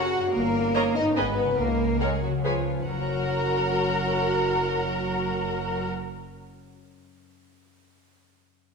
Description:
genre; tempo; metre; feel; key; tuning
cinematic, playful, whimsical film cue; 142 BPM; 3/4; straight; F# major; A4 = 437 Hz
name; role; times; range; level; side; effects
warm studio violin section; melody; 0.0-5.9 s; E#4 to F#5; -33 LUFS; left 2 dB; none
mellow French horn section; sustained chords; 0.0-5.9 s; E#3 to F#4; -28 LUFS; left 1 dB; none
concert harp; arpeggios; 0.0-6.8 s; F#2 to F#5; -34 LUFS; left 4 dB; none
rich studio cello section; bass; 0.0-5.9 s; E#3 to F#4; -33 LUFS; right 2 dB; none
warm studio double bass section; bass; 0.3-5.9 s; F#1 to C#2; -32 LUFS; right 5 dB; none
rich studio violin section; second line; 0.7-5.9 s; A#4 to A#5; -30 LUFS; left 1 dB; none
rich studio viola section; accompaniment; 0.8-5.9 s; F#4 to C#5; -30 LUFS; right 1 dB; none
room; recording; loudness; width
wet scoring stage reverb, RT60 1.7 s; minimal, uncompressed stereo recording; -23 LUFS; side -4 dB against mid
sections
0.0-2.9 A section; 2.9-5.4 B section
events
none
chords
0.3 D#7/G; 1.2 G#m; 1.6 F#/C#; 2.4 C#7; 2.9 F#

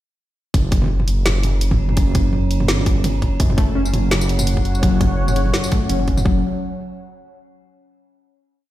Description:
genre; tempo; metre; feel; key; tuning
half-time drum and bass; 168 BPM; 4/4; swing 55% on 16ths, half-time; unclear; A4 = 440 Hz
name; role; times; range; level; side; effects
dark detuned saw bass; bass; 0.5-6.4 s; F#1 to G1; -19 LUFS; equal; none
drum and bass drum kit; drums; 0.5-6.2 s; hi-hat, snare drum, tambourine, toms; -23 LUFS; right 1 dB; none
electronic kick drum; drums; 0.5-6.3 s; none; -18 LUFS; equal; none
metallic inharmonic drone; texture; 1.0-6.3 s; C#4; -30 LUFS; right 4 dB; chorus, built-in reverb, phaser
dark analog pad; sustained chords; 4.1-6.4 s; F#3 to F#5; -27 LUFS; equal; chorus, sidechain pumping
warbly dusty pluck; arpeggios; 3.4-6.4 s; F#2 to C#4; -24 LUFS; left 4 dB; chorus, dub echo
room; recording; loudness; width
light reverb, digital ambience; played on a big sound system in a bare room, stone room reverb; -16 LUFS; side -14 dB against mid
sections
0.5-6.3 drop; 6.3-7.7 final chord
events
drop 0.5-6.3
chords
0.5 F#5

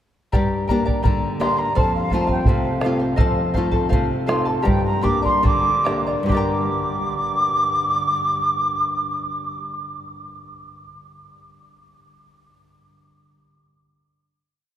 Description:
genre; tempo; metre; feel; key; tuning
andean folk, Andean ensemble; 67-84 BPM; 2/4; straight; G minor; A4 = 440 Hz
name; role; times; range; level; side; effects
charango; accompaniment; 0.3-9.9 s; G4 to Bb5; -26 LUFS; left 1 dB; none
nylon-string guitar; accompaniment; 0.3-9.7 s; F2 to G5; -24 LUFS; left 1 dB; none
bombo; percussion; 0.3-6.7 s; none; -22 LUFS; equal; none
large quena; melody; 1.4-9.6 s; F5 to D6; -22 LUFS; right 1 dB; none
room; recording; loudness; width
wet cathedral reverb, RT60 6.0 s; in a vast, echoing space; -18 LUFS; side -11 dB against mid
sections
0.3-6.3 A section; 6.3-9.9 final chord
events
slowing down 3.2-6.3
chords
0.3 Gm; 1.8 F; 3.2 F7; 4.7 Gm

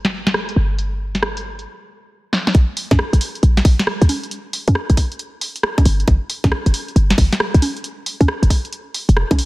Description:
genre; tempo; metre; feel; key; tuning
UK garage, two-step garage; 136 BPM; 4/4; swing 65% on 16ths; unclear; A4 = 440 Hz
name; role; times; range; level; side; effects
short 808-style bass; bass; 0.0-9.4 s; F1 to F2; -14 LUFS; equal; none
punchy analog drum machine; drums; 0.0-9.5 s; congas, hi-hat, rim click, snare drum; -21 LUFS; equal; low-pass filter on hats, small room ambience, low-pass filter on snare, low-pass filter on perc
electronic kick drum; drums; 2.5-9.4 s; none; -15 LUFS; equal; overdrive, small room ambience
room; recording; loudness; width
light reverb, digital ambience; none; -15 LUFS; side -20 dB against mid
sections
0.0-2.5 A section; 2.5-9.5 B section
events
drum fill 2.3; drop 2.5-9.5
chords
none

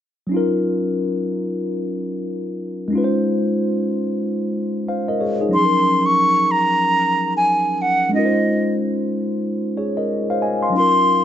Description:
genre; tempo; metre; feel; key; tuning
R&B; 92 BPM; 4/4; swing 62% on 16ths; Eb dorian; A4 = 441 Hz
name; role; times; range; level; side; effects
mellow tine electric piano; accompaniment; 0.3-11.2 s; F3 to C6; -19 LUFS; left 1 dB; wide subtle chorus
breathy silver concert flute; melody; 5.5-11.2 s; Eb5 to Db6; -16 LUFS; equal; none
room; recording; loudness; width
light reverb, studio reverb; nothing above 7.9 kHz; -17 LUFS; side -10 dB against mid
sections
0.3-5.5 A section; 5.5-11.2 B section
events
none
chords
0.3 Ebm9; 2.9 Dbmaj9; 5.5 Ebm9; 8.1 Dbmaj9; 10.7 Ebm9

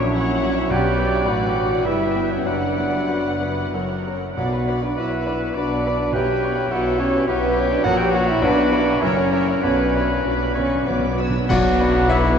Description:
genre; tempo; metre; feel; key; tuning
classical, romantic movement for piano and orchestra; 92-106 BPM; 3/4; rubato; B minor; A4 = 436 Hz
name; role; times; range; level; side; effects
bright baby grand piano; melody; 0.0-12.4 s; A#1 to F#5; -24 LUFS; left 3 dB; none
muted studio violin section; melody; 0.0-12.4 s; D4 to E6; -36 LUFS; right 2 dB; none
bright oboe; second line; 0.0-12.4 s; F#4 to F#5; -29 LUFS; left 3 dB; none
clear clarinet; second line; 0.0-12.4 s; B3 to G5; -28 LUFS; right 4 dB; none
muted studio violin section; second line; 0.0-12.4 s; B3 to F#5; -30 LUFS; left 2 dB; none
muted studio viola section; accompaniment; 0.0-12.4 s; F#3 to C#5; -34 LUFS; right 1 dB; none
mellow French horn section; sustained chords; 0.0-12.4 s; B3 to G4; -22 LUFS; right 1 dB; none
muted studio cello section; bass; 0.0-12.4 s; F#2 to B2; -30 LUFS; right 1 dB; none
muted studio double bass section; bass; 0.0-12.4 s; F#1 to B1; -28 LUFS; equal; none
mellow concert flute; second line; 0.7-12.4 s; A#4 to D6; -33 LUFS; left 1 dB; none
warm bassoon; accompaniment; 0.7-12.4 s; D3 to G3; -33 LUFS; right 4 dB; none
timpani; percussion; 0.7-1.5, 6.1-6.9, 9.6-12.3 s; B2; -29 LUFS; right 2 dB; none
cymbal swell, clash cymbals and concert bass drum; percussion; 7.9-12.4 s; none; -30 LUFS; equal; none
clear tuba; bass; 11.5-12.4 s; B1; -28 LUFS; left 1 dB; none
room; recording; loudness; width
wet huge ambient reverb, RT60 8.1 s; in a vast, echoing space, nothing above 8.0 kHz; -17 LUFS; side -7 dB against mid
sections
0.0-11.5 A section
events
timpani fill 9.6-11.5; band accent 11.5-12.1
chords
0.0 F#7/A#; 0.7 Bm; 1.9 Em/G; 2.5 Bm/F#; 3.7 F#; 4.4 Bm; 6.1 C#m7b5/B; 7.9 F#/A#; 8.4 Bm; 9.0 F#7; 9.6 Bm

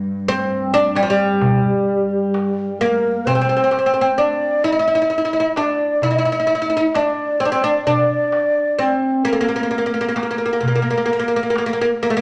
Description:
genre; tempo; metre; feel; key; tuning
Arabic maqam ensemble; 130 BPM (eighths); 10/8; straight; unclear; A4 = 443 Hz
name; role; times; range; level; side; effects
muted double bass; drone; 0.0-3.4 s; G2; -30 LUFS; equal; none
darbuka; percussion; 0.0-11.8 s; none; -26 LUFS; equal; none
oud; melody; 0.3-12.2 s; F3 to E4-50c; -20 LUFS; equal; none
breathy mellow ney; second line; 2.8-12.2 s; A4 to Eb5+50c; -22 LUFS; equal; none
room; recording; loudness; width
wet large studio reverb, RT60 1.1 s; none; -18 LUFS; mono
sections
0.0-3.3 A section; 3.3-12.2 B section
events
none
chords
none

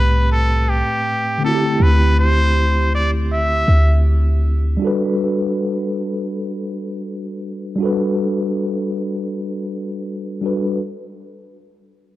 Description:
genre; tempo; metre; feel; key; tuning
contemporary R&B; 80 BPM; 4/4; straight; unclear; A4 = 440 Hz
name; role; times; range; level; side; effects
trumpet with straight mute; melody; 0.0-4.0 s; G4 to E5; -20 LUFS; equal; none
mellow tine electric piano; accompaniment; 0.0-10.8 s; A2 to B4; -21 LUFS; equal; medium stereo tremolo
clean 808-style bass; bass; 0.0-4.8 s; C2 to D2; -15 LUFS; equal; none
room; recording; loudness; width
light reverb, studio reverb; worn, warbling old tape, cassette tape, warbly pitch drift; -16 LUFS; side -15 dB against mid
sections
0.0-4.8 A section; 4.8-10.8 B section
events
none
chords
0.0 Am7; 1.4 D9sus4; 4.8 Gmaj9

